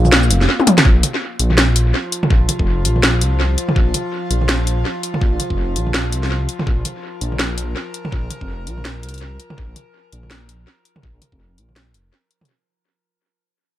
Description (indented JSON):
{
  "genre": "half-time drum and bass",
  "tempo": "165 BPM",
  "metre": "4/4",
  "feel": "swing 59% on 16ths, half-time",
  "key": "unclear",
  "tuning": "A4 = 444 Hz",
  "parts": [
    { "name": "dark analog pad", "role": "sustained chords", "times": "0.0-0.8 s", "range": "Bb3 to F5", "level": "-28 LUFS", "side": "right 1 dB", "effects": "chorus, phaser, sidechain pumping" },
    { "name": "dark detuned saw bass", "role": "bass", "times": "0.0-12.1 s", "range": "F1 to C2", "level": "-18 LUFS", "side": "equal", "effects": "none" },
    { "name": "drum and bass drum kit", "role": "drums", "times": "0.0-12.5 s", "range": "hi-hat, shaker, snare drum, toms", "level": "-17 LUFS", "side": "equal", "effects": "tape echo" },
    { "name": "metallic inharmonic drone", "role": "texture", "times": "1.4-12.5 s", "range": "F3 to Bb4", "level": "-28 LUFS", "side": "equal", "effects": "chorus, built-in reverb" },
    { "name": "electronic kick drum", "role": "drums", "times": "0.9-11.4 s", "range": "none", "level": "-17 LUFS", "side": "equal", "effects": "none" }
  ],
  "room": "light reverb",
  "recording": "echo-heavy mix",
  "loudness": "-15 LUFS",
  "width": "side -13 dB against mid",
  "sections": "0.8-12.5 A section",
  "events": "drum fill 0.6; fade-out 0.8-12.5",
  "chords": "0.0 Bb5",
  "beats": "0.12 0.49 | 0.85 1.21 1.58 1.94 | 2.31 2.67 3.03 3.40 | 3.76 4.12 4.49 4.85 | 5.21 5.58 5.94 6.30 | 6.67 7.03 7.40 7.76 | 8.12 8.49 8.85 9.21 | 9.58 9.94 10.30 10.67 | 11.03 11.40 11.76 12.12"
}